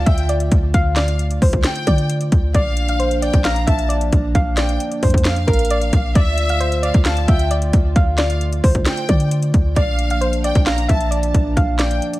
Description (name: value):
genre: hip hop, trap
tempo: 133 BPM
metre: 4/4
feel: half-time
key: D minor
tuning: A4 = 440 Hz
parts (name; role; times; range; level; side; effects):
- soft round pluck; melody; 0.0-12.2 s; Bb4 to F5; -23 LUFS; equal; chorus, digital delay
- clear studio violin section; second line; 0.0-12.0 s; E5 to Bb5; -27 LUFS; equal; digital delay
- dark analog pad; sustained chords; 0.0-12.2 s; D3 to F4; -26 LUFS; right 1 dB; lush chorus
- clean 808-style bass; bass; 0.0-12.0 s; A1 to D3; -18 LUFS; equal; none
- trap drum kit; drums; 0.1-12.2 s; handclaps, hi-hat, kick drum, snare drum; -18 LUFS; equal; none
room: digital ambience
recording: none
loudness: -14 LUFS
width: side -17 dB against mid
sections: 0.0-6.2 A section; 6.2-12.2 A section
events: none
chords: 0.0 Dm; 2.5 Bb; 6.2 Dm; 9.8 Bb